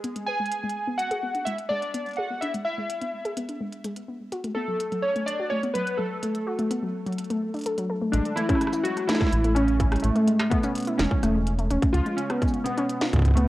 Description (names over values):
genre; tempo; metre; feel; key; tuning
IDM; 126 BPM; 4/4; straight; A major; A4 = 441 Hz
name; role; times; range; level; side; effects
warbly lo-fi synth keys; melody; 0.0-13.5 s; A3 to G#5; -28 LUFS; equal; chorus, ping-pong delay
warbly dusty pluck; arpeggios; 0.0-13.5 s; F#3 to B4; -28 LUFS; left 1 dB; chorus, digital delay
industrial drum kit; drums; 0.0-13.5 s; hi-hat, rim click, shaker, snare drum, struck metal; -33 LUFS; equal; none
round analog bass; bass; 8.1-13.5 s; E1 to C#2; -23 LUFS; equal; none
electronic kick drum; drums; 8.5-13.4 s; none; -25 LUFS; equal; distortion
room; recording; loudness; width
moderate plate reverb, RT60 1.1 s; worn, warbling old tape, cassette tape, warbly pitch drift; -23 LUFS; side -16 dB against mid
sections
0.0-8.1 A section; 8.1-13.5 B section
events
filter sweep on synth pluck 0.0-8.1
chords
0.0 N.C.; 0.5 E7; 4.3 B7(no3); 8.1 Amaj7; 11.9 C#7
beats
0.04 | 0.52 0.99 1.47 1.94 | 2.42 2.90 3.37 3.85 | 4.32 4.80 5.28 5.75 | 6.23 6.71 7.18 7.66 | 8.13 8.61 9.09 9.56 | 10.04 10.52 10.99 11.47 | 11.94 12.42 12.90 13.37